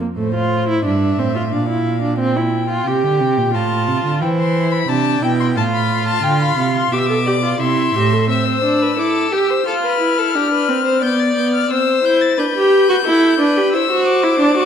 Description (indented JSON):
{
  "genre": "classical, baroque-style fugue for string quartet",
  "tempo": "89 BPM",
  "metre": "3/4",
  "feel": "straight",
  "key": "F major, C major from 8.3 s",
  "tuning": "A4 = 440 Hz",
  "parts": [
    { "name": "rich viola", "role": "accompaniment", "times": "0.0-14.7 s", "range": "A3 to A4", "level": "-17 LUFS", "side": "right 1 dB", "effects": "none" },
    { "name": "rich violin", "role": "melody", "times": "0.2-14.7 s", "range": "C5 to A6", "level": "-21 LUFS", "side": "left 9 dB", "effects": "none" },
    { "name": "rich cello", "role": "bass", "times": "0.2-8.3 s", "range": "G2 to E3", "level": "-19 LUFS", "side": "right 4 dB", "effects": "none" },
    { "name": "rich violin", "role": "second line", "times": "4.2-14.7 s", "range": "G4 to G5", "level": "-20 LUFS", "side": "left 3 dB", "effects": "none" }
  ],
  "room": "wet recital hall reverb, RT60 1.5 s",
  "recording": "dark, warm production",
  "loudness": "-14 LUFS",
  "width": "side -8 dB against mid",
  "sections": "0.2-8.3 A section; 8.3-14.7 B section",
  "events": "none",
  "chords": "0.2 F/A; 1.5 Bb; 2.2 C; 3.5 F/A; 4.2 C/E; 5.6 F/A; 6.2 G; 7.6 C; 9.7 F; 10.4 G; 11.7 C; 12.4 G; 13.7 C/E"
}